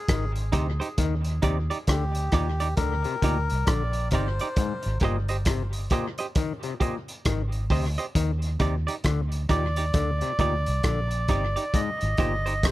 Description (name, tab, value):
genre	roots reggae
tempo	67 BPM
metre	4/4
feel	swing 61% on 16ths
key	Eb major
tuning	A4 = 440 Hz
part	melodica	melody	0.0-12.7 s	G4 to Eb5	-31 LUFS	equal	dub echo, plate reverb
part	overdriven clav	arpeggios	0.1-12.7 s	Ab2 to Eb3	-32 LUFS	left 6 dB	plate reverb
part	vintage muted fingered electric bass	bass	0.1-12.7 s	G1 to Eb2	-27 LUFS	equal	none
part	crunchy breakbeat drum kit	drums	0.1-12.7 s	hi-hat, kick drum, rim click	-27 LUFS	equal	none
part	semi-hollow electric guitar	accompaniment	0.5-12.5 s	Eb4 to Eb5	-32 LUFS	right 5 dB	dub echo, plate reverb
room	light reverb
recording	none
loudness	-23 LUFS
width	side -16 dB against mid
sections	0.0-12.7 A section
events	none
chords	0.0 Abmaj7; 1.0 Ebmaj7; 4.6 Abmaj7; 8.2 Ebmaj7; 11.7 Abmaj7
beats	0.09 | 0.98 1.88 2.78 3.67 | 4.57 5.47 6.36 7.26 | 8.16 9.05 9.95 10.84 | 11.74 12.63